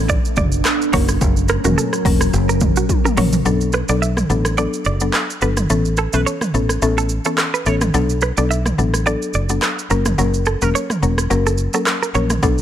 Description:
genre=afrobeats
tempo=107 BPM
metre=4/4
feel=swing 55% on 16ths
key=B minor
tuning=A4 = 440 Hz
part: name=mallet-like synth pluck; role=accompaniment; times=0.0-12.6 s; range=E3 to A#4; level=-21 LUFS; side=left 3 dB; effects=chorus
part: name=deep dark ambient pad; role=sustained chords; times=0.0-3.4 s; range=F#3 to A#4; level=-23 LUFS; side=equal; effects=chorus, built-in reverb
part: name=fingered electric bass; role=bass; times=0.0-12.6 s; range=E1 to B1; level=-19 LUFS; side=equal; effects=none
part: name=direct-recorded clean electric guitar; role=riff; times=0.1-12.2 s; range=F#4 to E5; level=-24 LUFS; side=right 6 dB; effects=ping-pong delay
part: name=deep house drum kit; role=drums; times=0.1-12.6 s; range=handclaps, hi-hat, kick drum, rim click, shaker, toms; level=-20 LUFS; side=right 1 dB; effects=overdrive
room=little or no reverb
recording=none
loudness=-15 LUFS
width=side -10 dB against mid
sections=0.0-3.5 A section; 3.5-12.6 B section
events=drum fill 2.9-3.5; kick muted 3.5-12.4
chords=0.0 Bm7; 0.9 F#; 3.5 Bm7; 5.7 Aadd9; 7.9 Bm7; 9.9 F#

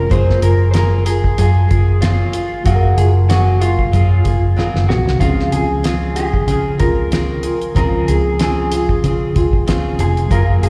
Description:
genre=indie pop, bedroom pop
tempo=94 BPM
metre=4/4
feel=swing 55% on 16ths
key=Db major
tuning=A4 = 440 Hz
part: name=electric guitar through a small old amp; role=melody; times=0.0-10.7 s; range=F4 to C5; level=-23 LUFS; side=equal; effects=lush chorus, slapback echo, tape echo
part: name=flamenco guitar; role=accompaniment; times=0.0-10.7 s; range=Db3 to Ab4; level=-25 LUFS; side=equal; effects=lush chorus, warbly pitch drift, slapback echo
part: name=reed electric piano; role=accompaniment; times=0.0-10.7 s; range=F3 to F5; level=-28 LUFS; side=equal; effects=cassette tape, slapback echo
part: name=vintage muted fingered electric bass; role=bass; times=0.0-10.7 s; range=F1 to Db3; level=-17 LUFS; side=equal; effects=none
part: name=cloth-damped thuddy drum kit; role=drums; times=0.1-10.7 s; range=hi-hat, kick drum, snare drum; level=-21 LUFS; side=equal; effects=none
room=studio ambience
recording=live gig heard through the venue's PA, recital hall reverb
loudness=-15 LUFS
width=mono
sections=0.0-10.7 A section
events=drum fill 4.6-5.2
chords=0.1 Gbmaj9; 5.2 Dbmaj7

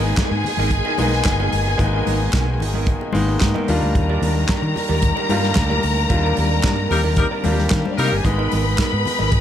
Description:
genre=disco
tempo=111 BPM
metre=4/4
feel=straight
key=Eb major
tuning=A4 = 439 Hz
part: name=warm studio string section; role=second line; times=0.0-9.4 s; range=Bb3 to Cb6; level=-24 LUFS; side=left 2 dB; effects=none
part: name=clear concert grand piano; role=accompaniment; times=0.0-9.4 s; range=G3 to G4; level=-25 LUFS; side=left 2 dB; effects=none
part: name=electric guitar through a small old amp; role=accompaniment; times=0.0-9.4 s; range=Cb4 to Eb5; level=-29 LUFS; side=right 6 dB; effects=spring reverb
part: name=mellow French horn section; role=sustained chords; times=0.0-9.4 s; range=Cb3 to Bb4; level=-30 LUFS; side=equal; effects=none
part: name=fingered electric bass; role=bass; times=0.0-9.4 s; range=G1 to Eb3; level=-21 LUFS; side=equal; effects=none
part: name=warm soul drum kit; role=drums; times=0.2-9.4 s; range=handclaps, hi-hat, kick drum, snare drum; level=-22 LUFS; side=equal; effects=none
part: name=congas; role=percussion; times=0.2-9.4 s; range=none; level=-30 LUFS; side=left 8 dB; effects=none
part: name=mellow horn section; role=stabs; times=6.9-8.2 s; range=G3 to Bb4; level=-22 LUFS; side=left 4 dB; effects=none
room=small room ambience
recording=none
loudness=-16 LUFS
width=side -10 dB against mid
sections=0.0-9.4 A section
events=band accent 6.1-8.3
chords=0.0 Abmadd9; 3.7 Ebmaj7; 8.3 Abmadd9

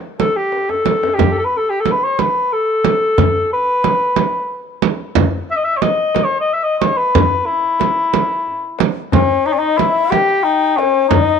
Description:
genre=Persian modal ensemble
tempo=60 BPM (dotted quarters)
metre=6/8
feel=straight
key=E avaz esfahan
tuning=A4 = 440 Hz
part: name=dark cor anglais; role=melody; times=0.2-11.4 s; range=C4+50c to E5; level=-16 LUFS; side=left 2 dB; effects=none
part: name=frame drum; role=percussion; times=0.2-11.3 s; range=none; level=-17 LUFS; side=right 11 dB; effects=none
part: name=tombak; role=percussion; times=0.2-11.3 s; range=none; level=-21 LUFS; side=left 5 dB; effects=none
part: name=breathy reedy low ney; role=second line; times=9.1-11.4 s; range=C5+49c to G5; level=-16 LUFS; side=left 13 dB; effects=none
room=light reverb, studio reverb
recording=1960s-style stereo with parts hard left and right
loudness=-13 LUFS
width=side -6 dB against mid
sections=0.0-9.1 A section; 9.1-11.4 B section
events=drum fill 0.5-1.2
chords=none

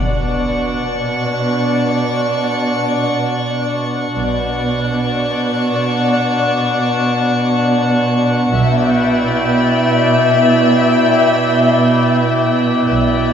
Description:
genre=cinematic, suspense film score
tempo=free time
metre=none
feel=none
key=B minor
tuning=A4 = 437 Hz
part: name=warm symphonic violin section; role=melody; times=0.0-13.3 s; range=D5 to E5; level=-20 LUFS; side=left 4 dB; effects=none
part: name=drifting glass-harmonics texture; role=sustained chords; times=0.0-13.3 s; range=D4 to C#6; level=-18 LUFS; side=equal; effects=chorus, built-in reverb
part: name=warm chamber cello section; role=bass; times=0.0-13.3 s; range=B2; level=-17 LUFS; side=right 2 dB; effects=none
part: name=warm studio double bass section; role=bass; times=0.0-13.3 s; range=B1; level=-22 LUFS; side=right 4 dB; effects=none
part: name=impact and reverse cymbal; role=sound effects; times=0.0-4.2, 12.9-13.3 s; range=none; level=-23 LUFS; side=left 1 dB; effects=none
part: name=warm chamber violin section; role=texture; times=8.5-13.3 s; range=D6 to G6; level=-25 LUFS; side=left 3 dB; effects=none
room=wet scoring stage reverb, RT60 1.6 s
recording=none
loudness=-13 LUFS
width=side -8 dB against mid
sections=0.0-13.3 A section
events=impact 0.0-4.2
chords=0.0 Bmadd9; 8.5 G6/B

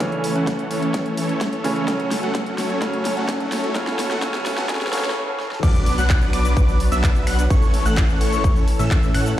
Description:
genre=EDM, festival progressive house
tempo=128 BPM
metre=4/4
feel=straight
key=A major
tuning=A4 = 440 Hz
part: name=bright concert grand piano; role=accompaniment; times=0.0-5.7 s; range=C#3 to C#4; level=-27 LUFS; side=right 2 dB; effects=sidechain pumping, digital delay
part: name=lush unison pad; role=sustained chords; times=0.6-9.4 s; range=E3 to B4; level=-32 LUFS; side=left 1 dB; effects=none
part: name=supersaw chords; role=riff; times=0.0-9.3 s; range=E3 to F#5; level=-24 LUFS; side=equal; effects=sidechain pumping, low-pass filter, digital delay
part: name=big-room dance drum kit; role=drums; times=0.0-9.4 s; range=crash cymbal, finger snaps, handclaps, hi-hat, shaker, snare drum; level=-28 LUFS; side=equal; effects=overdrive
part: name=electronic kick drum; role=drums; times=0.0-9.0 s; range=none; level=-18 LUFS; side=equal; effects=overdrive, high-pass filter on kick
part: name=riser, swell and impact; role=sound effects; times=1.6-7.5 s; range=none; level=-34 LUFS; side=equal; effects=none
part: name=plucky unison lead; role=arpeggios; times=5.6-9.3 s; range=C#6 to F#6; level=-27 LUFS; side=left 1 dB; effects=wide subtle chorus, cassette tape, sidechain pumping, digital delay
part: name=saturated sub bass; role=bass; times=5.6-9.4 s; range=A1 to A2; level=-22 LUFS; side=equal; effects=sidechain pumping
room=light reverb, digital ambience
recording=played on a big sound system in a bare room, large studio reverb, high-pass filter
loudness=-18 LUFS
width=side -12 dB against mid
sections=0.0-5.6 A section; 5.6-9.4 B section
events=build-up 0.0-5.6; drum fill 0.0-5.2, 5.4; filter sweep on supersaw synth 0.0-5.6; filter sweep 0.0-5.6; swell 4.7-5.6; break 5.2-5.6; drop 5.6-9.4; impact 5.6-7.5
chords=0.0 A; 1.9 F#m; 3.8 A; 5.6 Bm; 7.5 A

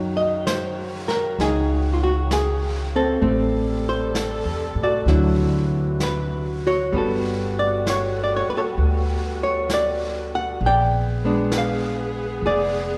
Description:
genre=jazz ballad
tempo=65 BPM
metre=4/4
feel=swing 69% on 8ths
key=unclear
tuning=A4 = 440 Hz
part: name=archtop guitar, miked and amplified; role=accompaniment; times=0.0-13.0 s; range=D3 to G5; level=-24 LUFS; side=equal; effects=none
part: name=mellow saxophone section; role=sustained chords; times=0.0-13.0 s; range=C3 to A4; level=-32 LUFS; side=equal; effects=none
part: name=upright bass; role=bass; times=0.0-13.0 s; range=F1 to A2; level=-27 LUFS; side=equal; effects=none
part: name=vintage brush drum kit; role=drums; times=0.5-13.0 s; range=brushed snare drum, hi-hat, snare drum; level=-35 LUFS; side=equal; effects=none
room=wet recital hall reverb, RT60 1.7 s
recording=recorded in a church or concert hall, lossy compression artefacts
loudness=-22 LUFS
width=mono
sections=0.0-13.0 A section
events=none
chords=0.0 Gb5; 3.2 Am7; 5.1 D9; 6.9 Gmaj9; 10.6 Bb7b9

